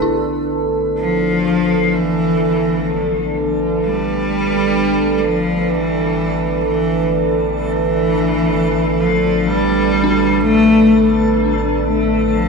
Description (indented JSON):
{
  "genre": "dark ambient drone",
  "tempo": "64 BPM",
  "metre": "4/4",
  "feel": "straight",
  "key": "unclear",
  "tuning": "A4 = 444 Hz",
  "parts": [
    { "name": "deep dark ambient pad", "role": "sustained chords", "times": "0.0-12.5 s", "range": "D4 to B4", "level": "-18 LUFS", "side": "right 2 dB", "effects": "chorus, built-in reverb" },
    { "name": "dark detuned synth bell", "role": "arpeggios", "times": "0.0-12.5 s", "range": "D4 to E4", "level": "-27 LUFS", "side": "left 5 dB", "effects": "none" },
    { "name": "deep rumbling drone", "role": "drone", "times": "0.0-12.5 s", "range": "A1", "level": "-27 LUFS", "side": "left 3 dB", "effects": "built-in reverb, analog chorus" },
    { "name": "backwards swelling texture", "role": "texture", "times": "0.0-12.5 s", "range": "A4", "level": "-32 LUFS", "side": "left 2 dB", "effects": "built-in reverb" },
    { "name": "bright cello", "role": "melody", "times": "1.0-12.5 s", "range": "E3 to A3", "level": "-16 LUFS", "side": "left 1 dB", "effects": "diffuse ambient delay" }
  ],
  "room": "wet plate reverb, RT60 2.5 s",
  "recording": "dreamy mix soaked in reverb, cassette tape, small room ambience",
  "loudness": "-14 LUFS",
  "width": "side -4 dB against mid",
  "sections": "0.0-12.5 A section",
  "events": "fade-in on synth texture 0.0-12.5; filter sweep on synth drone 0.0-12.5",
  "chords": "0.0 Asus2"
}